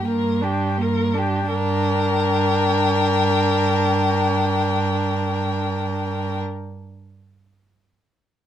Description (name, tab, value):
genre	classical, slow romantic movement for string quartet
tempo	41 BPM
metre	3/4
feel	rubato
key	G minor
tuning	A4 = 439 Hz
part	warm violin	melody	0.0-6.4 s	G5	-26 LUFS	left 5 dB	none
part	rich violin	second line	0.0-6.4 s	G4 to Bb4	-24 LUFS	left 6 dB	none
part	warm viola	accompaniment	0.0-6.4 s	Bb3 to D4	-24 LUFS	right 2 dB	none
part	rich cello	bass	0.1-6.4 s	G2	-24 LUFS	right 4 dB	none
room	little or no reverb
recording	close, detailed microphones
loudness	-18 LUFS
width	side -10 dB against mid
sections	0.0-1.5 A section; 1.5-5.9 B section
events	slowing down 0.0-1.5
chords	0.0 Gm